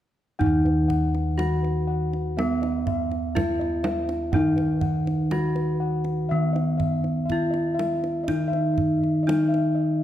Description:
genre	Javanese gamelan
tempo	61 BPM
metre	4/4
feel	straight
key	unclear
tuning	A4 = 440 Hz
part	gamelan-type bronze metallophone	melody	0.4-10.0 s	Cb4 to Gb4	-26 LUFS	left 1 dB	none
part	gamelan-type bronze metallophone	accompaniment	0.4-10.0 s	Eb3 to Cb4	-27 LUFS	right 1 dB	none
part	gamelan-type bossed gongs	arpeggios	0.4-10.0 s	Cb5 to Gb5	-31 LUFS	left 3 dB	tape echo
part	gamelan-type bossed gongs	bass	0.4-10.0 s	Eb2 to Fb4+35c	-28 LUFS	equal	none
part	kendang	percussion	0.4-9.7 s	none	-31 LUFS	right 3 dB	none
room	moderate recital hall reverb, RT60 1.8 s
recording	dark, warm production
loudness	-21 LUFS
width	side -12 dB against mid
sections	0.4-10.0 A section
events	none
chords	none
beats	| 0.41 1.39 2.38 3.36 | 4.34 5.33 6.31 7.29 | 8.28 9.27

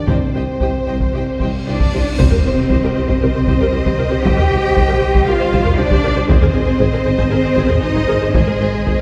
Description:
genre	cinematic, epic orchestral film score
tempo	116 BPM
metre	4/4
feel	straight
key	C minor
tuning	A4 = 440 Hz
part	warm symphonic violin section	melody	0.0-9.0 s	G4 to G5	-28 LUFS	equal	none
part	mellow French horn section	sustained chords	0.0-9.0 s	C4 to C5	-28 LUFS	equal	none
part	warm symphonic violin section	second line	0.1-9.0 s	C5 to G5	-28 LUFS	equal	none
part	warm symphonic viola section	accompaniment	0.1-9.0 s	G4 to C5	-25 LUFS	equal	none
part	mellow tuba	bass	0.1-8.9 s	Ab1 to C2+21c	-27 LUFS	equal	none
part	rich studio double bass section	bass	0.1-9.0 s	Ab1 to C2	-24 LUFS	equal	none
part	rich symphonic cello section	bass	0.1-9.0 s	C2 to G4	-22 LUFS	equal	none
part	taiko ensemble	drums	0.1-9.0 s	none	-20 LUFS	equal	none
part	cymbal swell and impact	sound effects	1.3-4.3 s	none	-31 LUFS	equal	none
room	wet scoring stage reverb, RT60 1.4 s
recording	heard from further back in the room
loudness	-15 LUFS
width	mono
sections	0.0-2.2 A section; 2.2-9.0 A section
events	cymbal swell 1.3-2.2; impact 2.2-4.3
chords	0.1 Cm; 6.3 Ab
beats	| 0.09 0.62 1.15 1.68 | 2.20 2.71 3.23 3.74 | 4.26 4.77 5.27 5.78 | 6.29 6.80 7.30 7.82 | 8.34 8.86

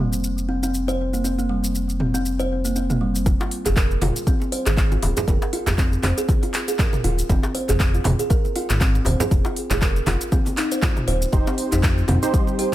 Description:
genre	afro house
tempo	119 BPM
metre	4/4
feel	swing 56% on 16ths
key	F minor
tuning	A4 = 440 Hz
part	kalimba	arpeggios	0.0-12.7 s	G3 to C5	-25 LUFS	right 1 dB	sidechain pumping, ping-pong delay
part	smooth synth bass	bass	0.0-12.2 s	Eb1 to Ab1	-23 LUFS	equal	sidechain pumping
part	deep house drum kit	drums	0.1-12.7 s	handclaps, hi-hat, shaker, toms	-27 LUFS	equal	none
part	electronic kick drum	drums	3.3-12.5 s	none	-20 LUFS	equal	none
part	congas	percussion	3.3-12.7 s	none	-28 LUFS	right 3 dB	none
part	djembe	percussion	3.4-12.5 s	none	-31 LUFS	left 1 dB	none
part	warm analog keys	stabs	11.3-12.7 s	Eb4 to C5	-25 LUFS	right 3 dB	chorus, sidechain pumping, ping-pong delay
room	digital ambience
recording	none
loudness	-18 LUFS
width	side -14 dB against mid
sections	0.0-3.3 A section; 3.3-12.7 B section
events	drop 3.3-12.7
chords	0.0 C5/F; 3.3 Fm; 11.3 Cm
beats	0.24 0.74 | 1.25 1.75 2.25 2.76 | 3.26 3.77 4.27 4.78 | 5.28 5.78 6.29 6.79 | 7.30 7.80 8.30 8.81 | 9.31 9.82 10.32 10.82 | 11.33 11.83 12.34

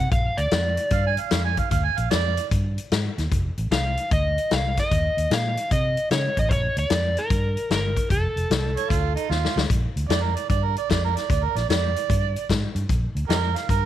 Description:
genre	electric blues shuffle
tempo	150 BPM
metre	4/4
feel	swing 66% on 8ths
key	unclear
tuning	A4 = 438 Hz
part	overdriven slide guitar	melody	0.0-1.1, 3.7-9.3 s	A4 to Gb5	-25 LUFS	equal	none
part	vintage muted fingered electric bass	bass	0.0-13.9 s	F1 to Db3	-25 LUFS	equal	none
part	swinging big-band drum kit	drums	0.1-13.8 s	hi-hat, kick drum, snare drum	-25 LUFS	left 2 dB	none
part	overdriven harmonica	second line	0.9-2.5, 8.8-13.9 s	Eb4 to Ab5	-26 LUFS	right 14 dB	none
room	studio ambience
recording	1960s-style stereo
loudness	-20 LUFS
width	side -12 dB against mid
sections	0.0-9.7 A section; 9.7-13.9 B section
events	drum fill 9.3-9.7; harmonica solo 9.7-13.9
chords	0.1 Bb; 3.3 F7(no3); 4.9 Ebsus2; 6.5 Bb; 8.1 F7; 9.7 Bb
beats	| 0.12 0.52 0.92 1.31 | 1.72 2.11 2.51 2.91 | 3.31 3.71 4.11 4.51 | 4.91 5.31 5.71 6.11 | 6.50 6.90 7.30 7.70 | 8.10 8.50 8.90 9.29 | 9.69 10.09 10.49 10.89 | 11.29 11.69 12.09 12.49 | 12.88 13.28 13.68

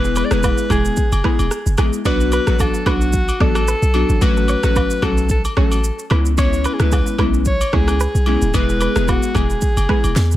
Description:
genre	afrobeats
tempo	111 BPM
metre	4/4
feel	swing 55% on 16ths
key	unclear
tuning	A4 = 440 Hz
part	breathy alto saxophone	melody	0.0-10.4 s	F#4 to D5	-23 LUFS	equal	none
part	glassy digital keys	accompaniment	0.0-10.1 s	F#3 to G#4	-21 LUFS	left 2 dB	chorus
part	direct-recorded clean electric guitar	riff	0.0-10.0 s	G#4 to D5	-29 LUFS	right 6 dB	tremolo, digital delay
part	warm 808-style bass	bass	0.0-10.4 s	D1 to E2	-18 LUFS	equal	none
part	afro-pop drum kit	drums	0.0-10.4 s	kick drum, rim click, shaker, snare drum, toms	-20 LUFS	equal	none
part	agogo bells and woodblock	percussion	0.2-10.2 s	none	-29 LUFS	left 3 dB	none
room	little or no reverb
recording	none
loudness	-14 LUFS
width	side -14 dB against mid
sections	0.0-10.4 A section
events	drum fill 10.2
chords	0.0 E; 2.1 Bm; 4.2 F#m/A; 6.1 C#m7; 8.5 E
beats	0.43 0.97 1.51 | 2.05 2.59 3.13 3.67 | 4.22 4.76 5.30 5.84 | 6.38 6.92 7.46 8.00 | 8.54 9.08 9.62 10.16

